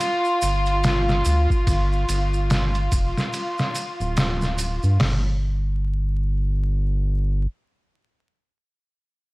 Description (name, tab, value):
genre	trip hop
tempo	72 BPM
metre	4/4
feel	swing 59% on 16ths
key	unclear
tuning	A4 = 440 Hz
part	warm chamber violin section	sustained chords	0.0-5.0 s	F4	-25 LUFS	equal	vintage 12-bit sampler grit, low-pass filter
part	trip hop sampler-style drum kit	drums	0.0-5.2 s	hi-hat, kick drum, ride cymbal, snare drum, toms	-24 LUFS	equal	none
part	maracas	percussion	0.0-5.0 s	none	-36 LUFS	right 3 dB	none
part	round analog bass	bass	0.4-7.5 s	D1 to G2	-21 LUFS	equal	tube saturation
room	little or no reverb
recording	dry, gritty hardware recording, vinyl crackle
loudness	-20 LUFS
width	side -22 dB against mid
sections	0.0-5.0 A section; 5.0-8.3 B section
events	none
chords	0.0 Fsus2; 5.0 N.C.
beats	0.00 0.83 | 1.67 2.50 3.33 4.17 | 5.00 5.83 6.67